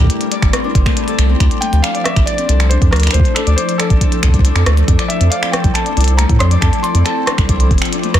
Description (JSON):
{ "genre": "IDM", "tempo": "138 BPM", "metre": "4/4", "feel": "straight", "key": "D minor", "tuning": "A4 = 440 Hz", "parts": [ { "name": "felt-muted upright piano", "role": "melody", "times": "0.0-7.7 s", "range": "A4 to C6", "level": "-22 LUFS", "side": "equal", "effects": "vintage 12-bit sampler grit, digital delay" }, { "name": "hollow soft pad", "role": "sustained chords", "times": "0.0-8.2 s", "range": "F3 to C5", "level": "-23 LUFS", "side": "left 1 dB", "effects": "ensemble chorus" }, { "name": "Celtic harp", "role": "arpeggios", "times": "0.0-8.2 s", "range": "D3 to D5", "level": "-21 LUFS", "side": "left 5 dB", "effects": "digital delay" }, { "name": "round analog bass", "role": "bass", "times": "0.0-8.2 s", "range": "F1 to A2", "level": "-13 LUFS", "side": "equal", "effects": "none" }, { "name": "electronic kick drum", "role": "drums", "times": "0.0-7.8 s", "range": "none", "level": "-14 LUFS", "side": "equal", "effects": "none" }, { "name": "glitchy drum kit", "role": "drums", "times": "0.1-8.2 s", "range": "finger snaps, hi-hat, rim click", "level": "-20 LUFS", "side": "right 1 dB", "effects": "soft clipping on snare" } ], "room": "light reverb", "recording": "dense, heavily limited modern master", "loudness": "-11 LUFS", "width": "side -11 dB against mid", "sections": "0.0-1.4 A section; 1.4-8.2 A section", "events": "kick drops out 1.0-1.4", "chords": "0.0 C7; 1.4 Dm9; 4.9 Fmaj7" }